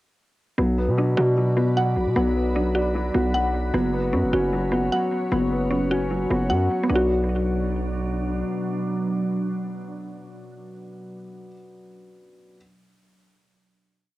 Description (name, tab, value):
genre	hip hop, trap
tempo	152 BPM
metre	4/4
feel	half-time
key	B minor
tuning	A4 = 440 Hz
part	dark concert grand piano	accompaniment	0.6-12.6 s	F#3 to F#4	-27 LUFS	left 1 dB	cassette tape
part	glassy FM pad	sustained chords	0.9-10.8 s	B2 to B5	-31 LUFS	equal	ensemble chorus, built-in reverb, cassette tape
part	mallet-like synth pluck	arpeggios	0.6-11.5 s	B3 to F#5	-24 LUFS	equal	chorus, cassette tape, analog delay
part	distorted 808-style bass	bass	0.6-8.4 s	F#1 to B2	-24 LUFS	equal	distortion
room	light reverb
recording	home recording on cassette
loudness	-20 LUFS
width	side -17 dB against mid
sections	0.6-6.9 breakdown; 6.9-10.1 final chord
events	none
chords	0.6 Bm; 3.7 F#sus4; 6.9 Bm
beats	| 0.58 0.98 1.37 1.76 | 2.16 2.56 2.95 3.34 | 3.74 4.13 4.53 4.92 | 5.32 5.71 6.11 6.50 | 6.90 7.29 7.69 8.08 | 8.48 8.87 9.27 9.66